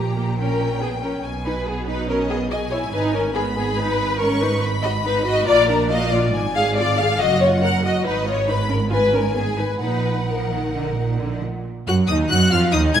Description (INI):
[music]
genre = quick classical-period movement for string orchestra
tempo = 140 BPM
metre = 4/4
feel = rubato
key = G# minor, Eb minor from 4.6 s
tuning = A4 = 441 Hz
[part]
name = warm symphonic violin section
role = melody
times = 0.0-13.0 s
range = B4 to Ab6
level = -27 LUFS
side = left 3 dB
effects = none
[part]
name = warm symphonic violin section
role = second line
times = 0.0-13.0 s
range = G4 to Ab5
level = -22 LUFS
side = left 2 dB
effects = none
[part]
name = rich symphonic viola section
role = accompaniment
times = 0.0-13.0 s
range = A#3 to Bb4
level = -26 LUFS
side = right 1 dB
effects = none
[part]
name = rich studio double bass section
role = bass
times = 0.0-13.0 s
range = Gb1 to Ab2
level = -25 LUFS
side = right 3 dB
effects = none
[part]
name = warm symphonic cello section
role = bass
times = 0.0-13.0 s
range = Gb2 to Ab3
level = -26 LUFS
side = right 3 dB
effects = none
[sound]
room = wet scoring stage reverb, RT60 1.5 s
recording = none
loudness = -18 LUFS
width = side -9 dB against mid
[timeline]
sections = 0.0-11.7 A section; 11.7-13.0 B section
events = none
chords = 0.0 A#m6; 1.2 G#m/B; 2.9 G#m; 5.5 Bb5; 6.3 Ddim/Ab; 7.2 Gb6; 8.1 Abm; 9.8 Ebm/Bb; 10.7 Bb; 11.7 Ebm